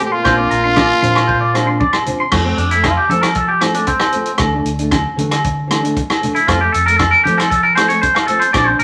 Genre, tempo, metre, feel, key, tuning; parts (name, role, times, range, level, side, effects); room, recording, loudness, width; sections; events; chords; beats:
highlife guitar band; 116 BPM; 4/4; straight; F major; A4 = 438 Hz
growling trumpet; melody; 0.0-1.8 s; F4 to G4; -18 LUFS; equal
trombone with bucket mute; second line; 0.0-1.8 s; Bb2; -29 LUFS; equal
flamenco guitar; accompaniment; 0.0-8.8 s; E3 to D4; -25 LUFS; equal
twangy electric guitar; arpeggios; 0.1-8.8 s; C4 to C6; -17 LUFS; equal
vintage drum kit; drums; 0.2-8.8 s; crash cymbal, hi-hat, kick drum, rim click; -22 LUFS; equal
fingered electric bass; bass; 0.3-8.8 s; Bb1 to F3; -23 LUFS; equal
agogo bells; percussion; 0.3-8.7 s; -24 LUFS; equal
congas; percussion; 0.3-8.6 s; -26 LUFS; equal
moderate studio reverb, RT60 1.0 s; -14 LUFS; mono
0.0-2.3 A section; 2.3-8.8 B section
clean electric guitar solo 2.3-8.8
0.3 Bbadd9; 2.3 F; 4.4 Dsus2; 6.5 F
| 0.26 0.77 1.29 1.81 | 2.33 2.85 3.36 3.88 | 4.40 4.92 5.43 5.95 | 6.47 6.98 7.50 8.02 | 8.53